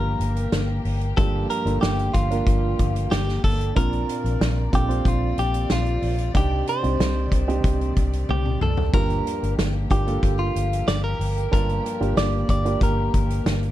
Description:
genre	piano-driven pop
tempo	93 BPM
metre	4/4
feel	straight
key	G minor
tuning	A4 = 439 Hz
part	direct-recorded clean electric guitar	melody	0.0-13.7 s	F4 to D5	-27 LUFS	equal	phaser, plate reverb
part	dark upright piano	accompaniment	0.0-13.7 s	G2 to A5	-28 LUFS	right 3 dB	plate reverb
part	rich studio string section	sustained chords	0.0-13.7 s	C3 to D5	-36 LUFS	left 1 dB	plate reverb
part	vintage muted fingered electric bass	bass	0.0-13.7 s	G1 to C2	-24 LUFS	equal	none
part	loose indie drum kit	drums	0.2-13.7 s	hi-hat, kick drum, snare drum, splash cymbal, toms	-24 LUFS	equal	none
room	little or no reverb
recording	dark, warm production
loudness	-20 LUFS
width	side -13 dB against mid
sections	0.0-13.7 A section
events	drum fill 8.3-8.9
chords	0.0 Gm7; 3.8 Bbadd9; 6.3 Cmadd9; 8.9 Gm7

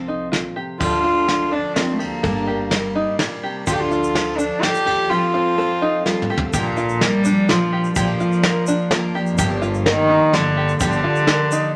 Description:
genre	indie folk with a building arrangement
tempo	126 BPM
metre	3/4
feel	straight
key	Bb major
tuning	A4 = 440 Hz
part	warm cello	melody	0.0-11.8 s	F2 to G4	-22 LUFS	equal	none
part	fingerpicked steel-string acoustic guitar	accompaniment	0.0-6.5 s	G2 to Bb4	-30 LUFS	equal	none
part	open-back banjo	arpeggios	0.0-11.7 s	D4 to Bb4	-27 LUFS	equal	none
part	upright bass	bass	0.0-11.0 s	G1 to Eb2	-34 LUFS	equal	none
part	soft brush drum kit	drums	0.3-11.4 s	crash cymbal, hi-hat, kick drum, ride cymbal, snare drum, toms	-25 LUFS	equal	none
part	picked twelve-string acoustic guitar	accompaniment	0.8-11.8 s	G2 to Bb4	-29 LUFS	equal	none
part	tube shaker	percussion	3.7-11.6 s	none	-35 LUFS	equal	none
room	moderate studio reverb, RT60 0.7 s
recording	none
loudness	-19 LUFS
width	mono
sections	0.8-6.5 A section; 6.5-11.8 B section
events	drum fill 6.1-6.5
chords	0.0 F/C; 0.8 Dm; 2.2 Gm; 3.7 Dm; 5.1 F; 6.5 Bb; 9.4 Gm7

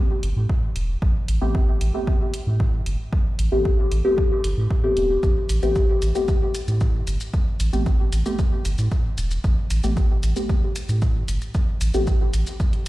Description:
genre	dub techno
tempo	114 BPM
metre	4/4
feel	straight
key	A minor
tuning	A4 = 436 Hz
part	soft dub sub bass	bass	0.2-12.9 s	E1 to A2	-22 LUFS	equal	sidechain pumping
part	electronic hi-hat and shaker	drums	0.2-12.9 s	none	-36 LUFS	equal	none
part	electronic kick drum	drums	0.5-12.7 s	none	-22 LUFS	equal	none
part	deep mellow chord stab	stabs	1.4-12.1 s	A3 to G4	-24 LUFS	left 1 dB	chorus, phaser, cassette tape, dub echo
room	little or no reverb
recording	played on a big sound system in a bare room, stone room reverb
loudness	-19 LUFS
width	side -17 dB against mid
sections	0.0-12.9 A section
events	none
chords	0.0 Am9

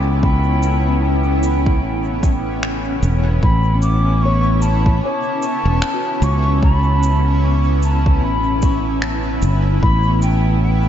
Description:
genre	ambient dub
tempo	75 BPM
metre	4/4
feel	swing 58% on 16ths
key	A mixolydian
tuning	A4 = 437 Hz
part	mellow hollow silver concert flute	melody	0.0-10.9 s	G5 to D6	-23 LUFS	left 1 dB	dub echo
part	granular cloud pad	sustained chords	0.0-10.9 s	B3 to A4	-22 LUFS	left 1 dB	built-in reverb
part	fingered electric bass	bass	0.0-10.9 s	E1 to C#2	-16 LUFS	equal	none
part	electronic kick drum	drums	0.2-10.0 s	none	-16 LUFS	equal	overdrive, studio reverb
part	cabasa and finger snaps	drums	0.6-10.4 s	none	-29 LUFS	equal	studio reverb, dub echo
part	handpan	arpeggios	3.7-9.3 s	C#4 to C#5	-29 LUFS	left 4 dB	dub echo
room	light reverb, small room ambience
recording	nothing above 7.6 kHz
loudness	-14 LUFS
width	side -10 dB against mid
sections	0.0-10.9 A section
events	none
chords	0.0 A13

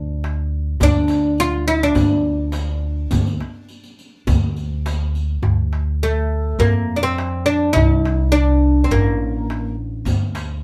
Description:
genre	Arabic maqam ensemble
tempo	104 BPM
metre	4/4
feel	straight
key	D maqam saba from 5.4 s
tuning	A4 = 442 Hz
part	upright bass	bass	0.0-10.6 s	A1 to F2	-22 LUFS	equal	none
part	darbuka	percussion	0.2-10.5 s	none	-24 LUFS	equal	none
part	oud	melody	0.8-9.7 s	A3 to F4	-21 LUFS	equal	none
part	riq	percussion	0.8-5.2, 10.1-10.5 s	none	-32 LUFS	equal	none
room	moderate studio ambience, RT60 0.5 s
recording	band playing live in one room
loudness	-19 LUFS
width	mono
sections	0.0-5.4 A section; 5.4-10.6 B section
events	none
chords	none

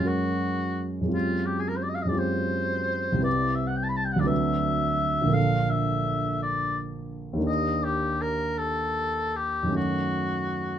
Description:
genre	classical, impressionist duo for oboe and grand piano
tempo	57 BPM (dotted quarters)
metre	6/8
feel	rubato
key	unclear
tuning	A4 = 439 Hz
part	warm oboe	melody	0.0-10.8 s	F4 to B5	-28 LUFS	left 2 dB	none
part	dark grand piano	accompaniment	0.0-10.8 s	Bb1 to B4	-26 LUFS	right 1 dB	none
room	little or no reverb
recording	close, detailed microphones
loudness	-24 LUFS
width	side -10 dB against mid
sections	0.0-10.8 A section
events	none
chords	0.0 F#add9; 1.1 Fmadd9/F#; 3.3 Cmaj7; 4.3 D13; 5.4 Bbmaj7; 7.5 Ebmaj7; 9.8 F#m6

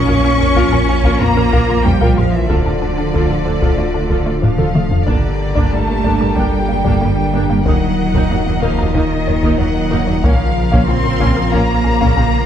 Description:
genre	cinematic, hybrid orchestral and electronic film score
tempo	93 BPM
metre	4/4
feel	straight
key	unclear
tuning	A4 = 444 Hz
part	rich studio violin section	melody	0.0-12.5 s	D5 to Db6	-23 LUFS	left 2 dB	none
part	warm studio violin section	second line	0.0-12.5 s	G4 to Db6	-26 LUFS	left 3 dB	none
part	rich symphonic viola section	accompaniment	0.0-12.2 s	F3 to Bb4	-23 LUFS	right 2 dB	none
part	mellow French horn section	sustained chords	0.0-12.5 s	Bb2 to Eb4	-23 LUFS	left 4 dB	none
part	warbly tape-like pad	sustained chords	0.0-12.5 s	Db3 to Bb4	-25 LUFS	left 1 dB	chorus, built-in reverb
part	warm trombone section	sustained chords	0.0-12.5 s	Bb2 to Bb3	-25 LUFS	right 4 dB	none
part	rich symphonic cello section	bass	0.0-12.5 s	D3 to Db4	-22 LUFS	right 3 dB	none
part	warm sub bass	bass	0.0-12.5 s	D1 to Bb1	-21 LUFS	equal	none
part	woody wave-folded pluck	arpeggios	0.1-12.3 s	D3 to Bb4	-26 LUFS	left 4 dB	none
part	clear symphonic double bass section	bass	0.1-12.2 s	Bb1 to G2	-21 LUFS	right 3 dB	none
part	taiko ensemble	drums	0.1-12.5 s	none	-19 LUFS	equal	none
room	moderate scoring stage reverb, RT60 1.9 s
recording	dark, warm production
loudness	-12 LUFS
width	side -9 dB against mid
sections	0.0-5.1 A section; 5.1-12.5 B section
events	drum fill 4.4-5.1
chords	0.0 Bbm; 2.5 Dm; 5.1 Gm; 7.7 Ebm; 10.2 Bbm

